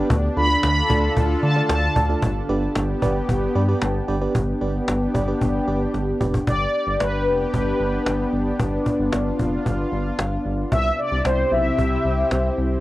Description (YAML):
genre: synth-pop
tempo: 113 BPM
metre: 4/4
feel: straight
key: G mixolydian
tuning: A4 = 439 Hz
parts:
  - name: FM electric piano with tremolo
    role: accompaniment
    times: 0.0-6.3 s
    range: A3 to A5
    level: -26 LUFS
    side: right 3 dB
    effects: cassette tape, plate reverb
  - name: lush unison pad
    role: sustained chords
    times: 0.0-12.8 s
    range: C3 to A4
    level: -24 LUFS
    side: equal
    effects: chorus, cassette tape
  - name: rubbery square bass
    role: bass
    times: 0.0-12.8 s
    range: F1 to D3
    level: -24 LUFS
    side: equal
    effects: none
  - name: cajon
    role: drums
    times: 0.1-12.4 s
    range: none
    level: -25 LUFS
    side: equal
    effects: cassette tape
  - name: mellow synth brass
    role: melody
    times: 0.4-2.2, 6.5-12.5 s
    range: B4 to B5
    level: -22 LUFS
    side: left 1 dB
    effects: chorus, phaser, cassette tape, tape echo
room: moderate booth ambience, RT60 0.2 s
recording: home recording on cassette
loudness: -19 LUFS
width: side -16 dB against mid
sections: 0.0-4.3 A section; 4.3-6.5 B section; 6.5-12.8 C section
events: FM electric piano fill 3.6-4.3; drum fill 5.9-6.5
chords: 0.1 Dm; 2.2 G; 10.7 C